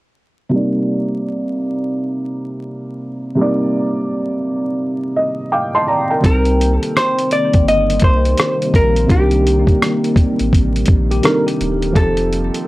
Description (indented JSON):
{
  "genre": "lo-fi hip hop",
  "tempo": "84 BPM",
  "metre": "4/4",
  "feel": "swing 64% on 16ths",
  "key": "C dorian",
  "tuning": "A4 = 439 Hz",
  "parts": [
    { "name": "felt-muted upright piano", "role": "accompaniment", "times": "0.5-12.7 s", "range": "C3 to D6", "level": "-18 LUFS", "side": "right 1 dB", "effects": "cassette tape, low-pass filter" },
    { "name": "warbly tape-like pad", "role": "sustained chords", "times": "6.7-12.7 s", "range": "C3 to A4", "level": "-21 LUFS", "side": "equal", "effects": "chorus, built-in reverb, tremolo, low-pass filter" },
    { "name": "warm sub bass", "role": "bass", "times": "6.2-12.5 s", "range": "Eb1 to C2", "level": "-18 LUFS", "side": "equal", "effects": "tube saturation" },
    { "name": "dusty soul sampler-style drum kit", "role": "drums", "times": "6.2-12.7 s", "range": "hi-hat, kick drum, rim click", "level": "-15 LUFS", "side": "equal", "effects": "none" },
    { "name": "vintage hollow-body jazz guitar", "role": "melody", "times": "6.3-12.6 s", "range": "G4 to Eb5", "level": "-17 LUFS", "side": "left 1 dB", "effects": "low-pass filter" },
    { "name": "tine electric piano", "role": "second line", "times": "11.1-11.9 s", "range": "G4 to Bb4", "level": "-22 LUFS", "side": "equal", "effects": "medium stereo tremolo, low-pass filter, tape echo" }
  ],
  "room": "little or no reverb",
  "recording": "dry, gritty hardware recording, vinyl crackle",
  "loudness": "-13 LUFS",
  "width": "side -18 dB against mid",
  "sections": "0.5-6.2 A section; 6.2-12.7 B section",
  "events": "filter sweep on felt piano 0.5-6.2; felt piano fill 4.8-6.2",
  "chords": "0.5 Cm7; 12.0 F7"
}